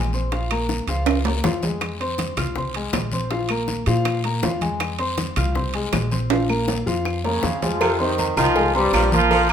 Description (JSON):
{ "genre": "latin, salsa", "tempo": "160 BPM", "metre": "4/4", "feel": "straight", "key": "F minor", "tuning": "A4 = 438 Hz", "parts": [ { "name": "clear baby grand piano", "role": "accompaniment", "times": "0.0-9.5 s", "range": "F3 to F6", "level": "-25 LUFS", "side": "left 2 dB", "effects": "none" }, { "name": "upright bass", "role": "bass", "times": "0.0-9.5 s", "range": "Bb1 to Bb2", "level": "-25 LUFS", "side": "equal", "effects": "none" }, { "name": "guiro", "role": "percussion", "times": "0.1-9.5 s", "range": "none", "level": "-34 LUFS", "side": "left 6 dB", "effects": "none" }, { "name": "bongos and cowbell", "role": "percussion", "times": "0.3-9.5 s", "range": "none", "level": "-28 LUFS", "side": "left 4 dB", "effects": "none" }, { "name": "congas", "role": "percussion", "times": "0.3-9.5 s", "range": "none", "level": "-30 LUFS", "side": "equal", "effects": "none" }, { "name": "timbales and agogo bells", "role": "percussion", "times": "0.3-9.5 s", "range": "none", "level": "-26 LUFS", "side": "right 7 dB", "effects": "none" }, { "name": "claves", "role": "percussion", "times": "0.5-9.5 s", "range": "none", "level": "-32 LUFS", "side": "right 2 dB", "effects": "none" }, { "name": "bright trombone section", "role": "melody", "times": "7.2-9.5 s", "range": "G2 to F4", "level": "-21 LUFS", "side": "right 2 dB", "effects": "none" }, { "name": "clear saxophone section", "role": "second line", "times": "7.8-9.5 s", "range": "C3 to F3", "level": "-25 LUFS", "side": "equal", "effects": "none" } ], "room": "moderate large studio reverb, RT60 0.9 s", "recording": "minimal, uncompressed stereo recording", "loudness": "-19 LUFS", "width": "side -8 dB against mid", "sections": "0.0-7.8 A section; 7.8-9.5 B section", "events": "drum fill 1.1-1.8, 6.3-7.8", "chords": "0.3 Bbm; 1.8 Fm; 3.3 Bb5; 4.8 Fm; 6.3 Bbm; 7.8 Fm" }